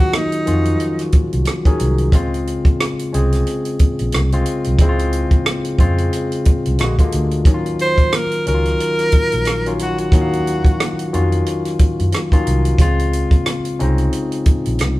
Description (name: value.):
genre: R&B, neo-soul.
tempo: 90 BPM.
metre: 4/4.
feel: swing 58% on 16ths.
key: Eb dorian.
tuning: A4 = 442 Hz.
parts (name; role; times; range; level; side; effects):
clear tenor saxophone; melody; 0.0-1.1, 7.8-11.3 s; Eb4 to C5; -19 LUFS; right 1 dB; none.
barky tine electric piano; accompaniment; 0.0-15.0 s; Db3 to F5; -20 LUFS; left 2 dB; overdrive.
vintage muted fingered electric bass; bass; 0.0-15.0 s; Bb1 to Gb2; -19 LUFS; equal; none.
compact cocktail drum kit; drums; 0.1-15.0 s; hi-hat, kick drum, rim click; -16 LUFS; equal; none.
room: light reverb.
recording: band playing live in one room.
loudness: -14 LUFS.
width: side -18 dB against mid.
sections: 0.0-15.0 A section.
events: none.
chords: 0.0 Ebm9; 2.1 Dbmaj7; 6.8 Bb7b13; 7.5 Ebm9; 12.8 Dbmaj7.